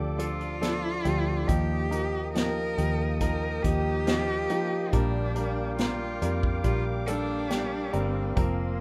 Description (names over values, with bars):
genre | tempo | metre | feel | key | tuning
pop ballad | 70 BPM | 4/4 | straight | Bb major | A4 = 440 Hz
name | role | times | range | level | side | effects
clear baby grand piano | accompaniment | 0.0-8.8 s | Bb2 to C5 | -34 LUFS | equal | none
sweeping resonant pad | sustained chords | 0.0-8.8 s | Bb3 to Eb6 | -40 LUFS | equal | chorus
vintage muted fingered electric bass | bass | 0.0-8.8 s | F1 to F2 | -32 LUFS | equal | none
warm cello | melody | 0.2-8.8 s | Bb3 to Bb4 | -35 LUFS | equal | none
unplugged drum kit | drums | 0.2-8.6 s | hi-hat, kick drum, snare drum | -32 LUFS | equal | none
room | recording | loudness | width
light reverb, small room reverb | rough home demo mix | -28 LUFS | mono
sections
0.0-8.8 A section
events
none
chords
0.0 Dm; 1.5 Ebadd9; 4.9 Bb6